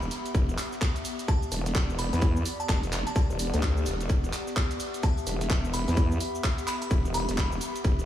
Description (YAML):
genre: bass house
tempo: 128 BPM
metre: 4/4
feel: swing 61% on 16ths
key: E minor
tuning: A4 = 440 Hz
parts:
  - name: glassy synth bell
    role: melody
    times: 0.0-7.8 s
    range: A5 to B5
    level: -37 LUFS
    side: left 1 dB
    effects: chorus, analog delay
  - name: vowel-sweep wobble bass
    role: bass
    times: 0.0-8.1 s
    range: E1 to E2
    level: -28 LUFS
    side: equal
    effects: chorus, overdrive, sidechain pumping
  - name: house drum kit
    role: drums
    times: 0.0-8.1 s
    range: cabasa, handclaps, hi-hat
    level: -34 LUFS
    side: right 1 dB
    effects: none
  - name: warbly tape-like pad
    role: texture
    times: 0.0-8.1 s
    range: B3 to E5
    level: -35 LUFS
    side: left 1 dB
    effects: chorus, built-in reverb, sidechain pumping
  - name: damped 70s drum kit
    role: drums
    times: 0.1-8.0 s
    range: hi-hat, snare drum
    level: -48 LUFS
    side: right 2 dB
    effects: none
  - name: electronic kick drum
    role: drums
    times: 0.3-8.0 s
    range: none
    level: -24 LUFS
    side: equal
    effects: none
room: light reverb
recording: small room ambience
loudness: -25 LUFS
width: side -12 dB against mid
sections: 0.0-8.1 A section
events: none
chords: 0.0 Em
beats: | 0.35 0.81 1.28 1.75 | 2.22 2.69 3.16 3.63 | 4.10 4.57 5.03 5.50 | 5.97 6.44 6.91 7.38 | 7.85